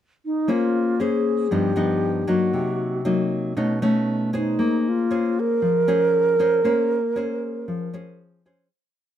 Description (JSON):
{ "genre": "bossa nova", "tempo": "117 BPM", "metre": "4/4", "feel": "straight", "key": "Bb minor", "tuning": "A4 = 440 Hz", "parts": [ { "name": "reedy wooden-headed alto flute", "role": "melody", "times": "0.3-8.2 s", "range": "Eb4 to Bb4", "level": "-22 LUFS", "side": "right 1 dB", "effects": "none" }, { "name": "nylon-string guitar", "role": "accompaniment", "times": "0.5-8.7 s", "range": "G2 to C5", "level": "-22 LUFS", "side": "left 2 dB", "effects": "none" } ], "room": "light reverb", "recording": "none", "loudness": "-19 LUFS", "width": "side -10 dB against mid", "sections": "0.0-0.5 pickup bar; 0.5-8.7 A section", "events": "fade-out 6.6-8.7", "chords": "0.5 Bbm9; 1.5 G7alt; 2.5 Cm7b5; 3.6 B9; 4.6 Bbm9" }